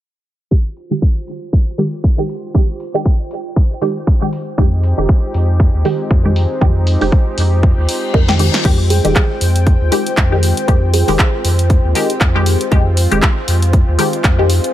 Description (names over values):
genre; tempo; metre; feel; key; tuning
deep house; 118 BPM; 4/4; swing 57% on 16ths; F minor; A4 = 439 Hz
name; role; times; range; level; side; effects
filtered dub chord stab; stabs; 0.5-14.7 s; Eb3 to Bb4; -19 LUFS; equal; phaser, sidechain pumping, tape echo
electronic kick drum; drums; 0.5-14.4 s; none; -12 LUFS; equal; none
warbly tape-like pad; texture; 0.5-14.7 s; F4 to C5; -25 LUFS; equal; chorus, built-in reverb, sidechain pumping
punchy analog drum machine; drums; 0.8-14.7 s; crash cymbal, handclaps, hi-hat, snare drum; -20 LUFS; equal; none
warm analog pad; sustained chords; 4.6-14.7 s; Ab3 to G5; -26 LUFS; left 1 dB; chorus, tremolo, sidechain pumping
warm sub bass; bass; 4.6-14.6 s; F1 to F2; -14 LUFS; equal; sidechain pumping
reverse cymbal; sound effects; 7.8-8.6 s; none; -25 LUFS; left 7 dB; none
kalimba; melody; 8.9-11.7 s; Ab4; -23 LUFS; right 6 dB; dub echo
room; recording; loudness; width
little or no reverb; low-pass filter; -12 LUFS; side -13 dB against mid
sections
0.5-8.6 A section; 8.6-14.7 B section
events
filter sweep on synth stab 0.5-8.6; filter sweep 0.5-8.6; reverse cymbal 7.8-8.6; drum fill 8.3-8.6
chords
0.5 Fm9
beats
| 0.51 1.02 1.53 2.04 | 2.55 3.06 3.56 4.07 | 4.58 5.09 5.60 6.11 | 6.62 7.12 7.63 8.14 | 8.65 9.16 9.67 10.18 | 10.68 11.19 11.70 12.21 | 12.72 13.23 13.73 14.24